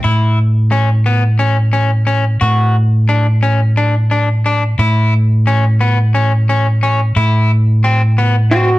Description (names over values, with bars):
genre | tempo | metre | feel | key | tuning
progressive instrumental, progressive | 177 BPM (eighths) | 7/8 | straight | A major | A4 = 439 Hz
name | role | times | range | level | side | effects
semi-hollow electric guitar | arpeggios | 0.0-8.7 s | B3 to F#4 | -17 LUFS | left 3 dB | none
fingered electric bass | bass | 0.0-8.8 s | A2 | -12 LUFS | equal | none
hollow-body jazz guitar | melody | 8.5-8.8 s | F#4 | -13 LUFS | equal | none
clear flugelhorn | second line | 8.5-8.8 s | F#4 | -19 LUFS | right 4 dB | none
room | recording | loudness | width
light reverb | blown-out, overdriven recording, overdrive | -11 LUFS | side -17 dB against mid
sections
0.0-8.8 A section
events
none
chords
0.0 A; 2.4 Asus4; 4.8 A; 7.2 C/A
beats
| 0.04 0.38 0.71 1.05 1.39 1.73 2.07 | 2.41 2.75 3.09 3.43 3.77 4.10 4.44 | 4.78 5.12 5.46 5.80 6.14 6.48 6.82 | 7.16 7.50 7.84 8.18 8.52